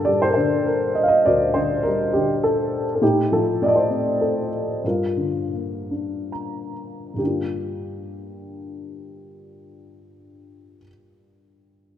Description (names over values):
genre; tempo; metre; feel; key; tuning
classical, lyrical solo piano; 66-105 BPM; 3/4; rubato; G minor; A4 = 440 Hz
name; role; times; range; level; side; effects
dark upright piano; solo; 0.0-12.0 s; D2 to Bb5; -20 LUFS; equal; none
room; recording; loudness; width
moderate concert hall reverb, RT60 2.4 s; minimal, uncompressed stereo recording; -19 LUFS; side -10 dB against mid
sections
0.0-7.2 A section; 7.2-12.0 B section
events
slowing down 3.0-7.2; upright piano fill 5.9-7.2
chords
0.0 Gm; 3.0 F7/A; 4.8 Gm7